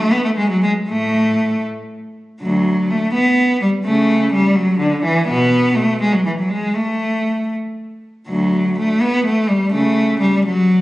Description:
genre	classical, baroque-style suite movement for unaccompanied cello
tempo	77-86 BPM (dotted quarters)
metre	6/8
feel	rubato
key	unclear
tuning	A4 = 440 Hz
part	rich cello	solo	0.0-10.8 s	D2 to B3	-14 LUFS	equal	none
room	moderate recital hall reverb, RT60 1.6 s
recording	recorded on a phone in the room, club reverb, compression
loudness	-14 LUFS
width	side -17 dB against mid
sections	0.0-2.4 A section; 2.4-10.8 A section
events	none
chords	none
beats	0.12 | 0.88 1.64 | 2.41 3.15 | 3.87 4.57 | 5.28 6.01 | 6.76 7.53 | 8.30 9.04 | 9.75 10.46

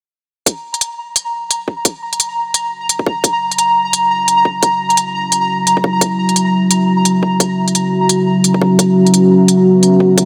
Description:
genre	half-time drum and bass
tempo	173 BPM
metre	4/4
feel	swing 59% on 16ths, half-time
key	C# dorian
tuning	A4 = 441 Hz
part	deep dark ambient pad	sustained chords	3.7-10.3 s	C#4 to E5	-14 LUFS	equal	chorus, built-in reverb, sidechain pumping
part	electronic hi-hat	drums	0.5-10.3 s	none	-16 LUFS	equal	none
part	electronic kick drum	drums	0.5-10.3 s	none	-20 LUFS	equal	high-pass filter on kick
part	pulsing gated texture	texture	0.5-10.3 s	A#5	-19 LUFS	equal	chorus, built-in reverb
room	wet lush hall reverb, RT60 2.0 s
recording	dreamy mix soaked in reverb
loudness	-14 LUFS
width	mono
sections	0.5-10.3 A section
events	none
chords	0.5 C#m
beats	| 0.47 0.81 1.16 1.51 | 1.85 2.20 2.55 2.89 | 3.24 3.59 3.93 4.28 | 4.63 4.97 5.32 5.67 | 6.01 6.36 6.71 7.05 | 7.40 7.75 8.10 8.44 | 8.79 9.14 9.48 9.83 | 10.18

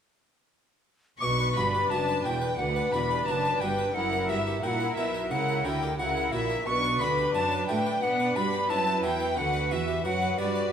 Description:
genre	classical, baroque-style concerto movement with solo episodes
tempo	88 BPM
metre	4/4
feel	straight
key	B minor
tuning	A4 = 440 Hz
part	alto recorder	melody	1.2-10.7 s	D5 to D6	-30 LUFS	equal	none
part	rich chamber violin section	melody	1.2-10.7 s	D5 to C#6	-33 LUFS	left 3 dB	none
part	rich studio violin section	second line	1.2-10.7 s	A#4 to B4	-32 LUFS	left 2 dB	none
part	harpsichord	accompaniment	1.2-10.7 s	D2 to B4	-34 LUFS	right 1 dB	none
part	rich studio viola section	accompaniment	1.2-10.7 s	D4 to F#4	-35 LUFS	equal	none
part	dark symphonic double bass section	bass	1.2-10.7 s	E1 to B2	-35 LUFS	right 3 dB	none
part	warm studio cello section	bass	1.2-10.7 s	D2 to B3	-34 LUFS	right 3 dB	none
room	moderate recital hall reverb, RT60 1.7 s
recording	minimal, uncompressed stereo recording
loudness	-24 LUFS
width	side -8 dB against mid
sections	1.2-10.7 A section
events	none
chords	1.2 Bm; 4.0 F#7; 6.7 Bm; 9.4 Bm/D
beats	| 1.22 1.91 2.59 3.27 | 3.95 4.63 5.31 5.99 | 6.67 7.34 8.02 8.70 | 9.37 10.05 10.72

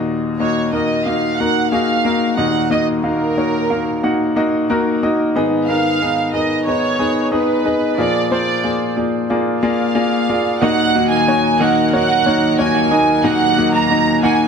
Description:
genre	pop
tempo	91 BPM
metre	4/4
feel	straight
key	Eb minor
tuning	A4 = 441 Hz
part	clear upright piano	accompaniment	0.0-14.5 s	Eb2 to Gb5	-16 LUFS	left 2 dB	none
part	warm studio violin section	melody	0.4-14.5 s	Bb4 to Bb5	-19 LUFS	right 3 dB	none
part	warm studio string section	sustained chords	10.6-14.5 s	Eb2 to Bb4	-26 LUFS	right 2 dB	none
part	direct-recorded clean electric guitar	riff	10.6-14.5 s	Eb3 to Gb4	-22 LUFS	right 10 dB	lush chorus
room	moderate scoring stage reverb, RT60 1.4 s, small room ambience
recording	none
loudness	-14 LUFS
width	side -6 dB against mid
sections	0.0-10.6 A section; 10.6-14.5 B section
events	none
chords	0.0 Ebm; 5.3 Abm; 8.0 Bb7; 10.6 Ebm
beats	| 0.08 0.74 1.40 2.06 | 2.71 3.37 4.03 4.69 | 5.35 6.01 6.67 7.32 | 7.98 8.64 9.30 9.96 | 10.62 11.27 11.93 12.59 | 13.24 13.90

